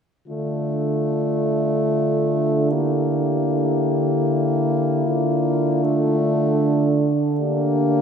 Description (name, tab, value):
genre	classical, lyrical piece for horn quartet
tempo	76 BPM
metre	3/4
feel	uneven beats, rubato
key	D minor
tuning	A4 = 440 Hz
part	mellow French horn	melody	0.3-8.0 s	F4 to G4	-26 LUFS	left 7 dB	none
part	dark French horn	second line	0.3-8.0 s	D4 to E4	-25 LUFS	right 8 dB	none
part	warm French horn	accompaniment	0.3-8.0 s	A3 to Bb3	-24 LUFS	left 3 dB	none
part	mellow French horn	bass	0.3-8.0 s	D3	-22 LUFS	right 1 dB	none
room	moderate cathedral reverb, RT60 5.5 s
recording	none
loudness	-18 LUFS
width	side -7 dB against mid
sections	0.3-8.0 A section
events	none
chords	0.3 Dm; 2.7 Em7b5/D; 5.1 Dm; 7.4 Gm/D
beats	| 0.28 1.11 1.91 | 2.72 3.52 4.30 | 5.07 5.84 6.62 | 7.41